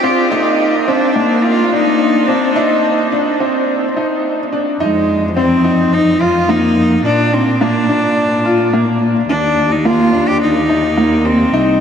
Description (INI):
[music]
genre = piano and strings electronica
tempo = 107 BPM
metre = 4/4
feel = straight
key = F dorian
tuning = A4 = 440 Hz
[part]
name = rich cello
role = melody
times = 0.0-11.8 s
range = Ab3 to G4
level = -15 LUFS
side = equal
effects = none
[part]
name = clear concert grand piano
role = riff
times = 0.0-11.8 s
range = Bb3 to F4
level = -14 LUFS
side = left 1 dB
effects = wide subtle chorus, analog delay
[part]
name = dark chamber cello section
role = bass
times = 4.8-11.8 s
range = C2 to Bb2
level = -18 LUFS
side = equal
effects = none
[sound]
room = wet huge ambient reverb, RT60 8.4 s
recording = dreamy mix soaked in reverb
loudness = -11 LUFS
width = side -7 dB against mid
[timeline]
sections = 0.0-4.8 A section; 4.8-11.8 B section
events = build-up 0.0-4.8; break 2.6-4.8; drop 4.8-11.8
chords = 0.3 Eb5; 2.6 Cm; 4.8 Fm7; 7.0 Bb; 9.3 Eb5